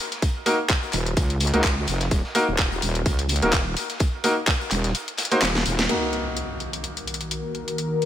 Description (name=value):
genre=bass house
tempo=127 BPM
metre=4/4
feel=swing 56% on 16ths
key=Eb minor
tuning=A4 = 445 Hz
part: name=garage drum kit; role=drums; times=0.1-8.1 s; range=handclaps, hi-hat, snare drum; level=-26 LUFS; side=left 1 dB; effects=studio reverb
part: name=raw garage drum kit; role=drums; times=0.1-5.9 s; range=hi-hat, snare drum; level=-34 LUFS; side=left 1 dB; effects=none
part: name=electronic kick drum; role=drums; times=0.2-4.6 s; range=none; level=-23 LUFS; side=equal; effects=studio reverb
part: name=bright grand piano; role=stabs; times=0.5-8.1 s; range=Bb3 to C5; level=-26 LUFS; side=equal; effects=sidechain pumping, low-pass filter, ping-pong delay
part: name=wobble bass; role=bass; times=0.9-5.9 s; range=Eb1 to Db2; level=-24 LUFS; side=equal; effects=chorus, overdrive, sidechain pumping
part: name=sweeping resonant pad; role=sustained chords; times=5.9-8.1 s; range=Eb3 to Bb4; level=-28 LUFS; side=left 2 dB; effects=chorus, sidechain pumping
part: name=impact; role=sound effects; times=5.9-7.8 s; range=none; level=-34 LUFS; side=equal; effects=none
room=light reverb, small room ambience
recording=none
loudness=-21 LUFS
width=side -11 dB against mid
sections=0.0-5.9 A section; 5.9-8.1 B section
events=kick drops out 4.9-5.9; drum fill 5.4-5.9; band accent 5.8; impact 5.9-7.8; filter sweep on analog synth pad 5.9-8.1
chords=0.0 Eb5; 5.9 Ebm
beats=| 0.22 0.70 1.17 1.64 | 2.11 2.59 3.06 3.53 | 4.00 4.48 4.95 5.42 | 5.89 6.37 6.84 7.31 | 7.78